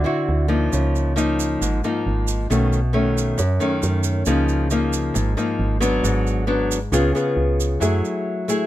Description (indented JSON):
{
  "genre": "bossa nova",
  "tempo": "135 BPM",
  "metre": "4/4",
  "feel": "straight",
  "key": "Db major",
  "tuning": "A4 = 440 Hz",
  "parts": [
    { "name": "nylon-string guitar", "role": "accompaniment", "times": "0.0-8.7 s", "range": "Gb2 to Ab4", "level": "-20 LUFS", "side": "left 1 dB", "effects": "none" },
    { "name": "woody FM bass", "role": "bass", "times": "0.0-8.0 s", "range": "Ab1 to Gb2", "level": "-22 LUFS", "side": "right 1 dB", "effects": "none" },
    { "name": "tube shaker", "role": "percussion", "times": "0.7-8.7 s", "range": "none", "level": "-31 LUFS", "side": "right 9 dB", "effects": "none" }
  ],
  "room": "little or no reverb",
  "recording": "close, detailed microphones",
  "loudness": "-18 LUFS",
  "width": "side -14 dB against mid",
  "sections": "0.0-7.8 A section",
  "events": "none",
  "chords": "0.0 D9; 0.7 Db69; 2.5 Cb9; 4.3 Db69; 6.0 Abm7b5; 6.9 Db7; 7.8 Gbm9"
}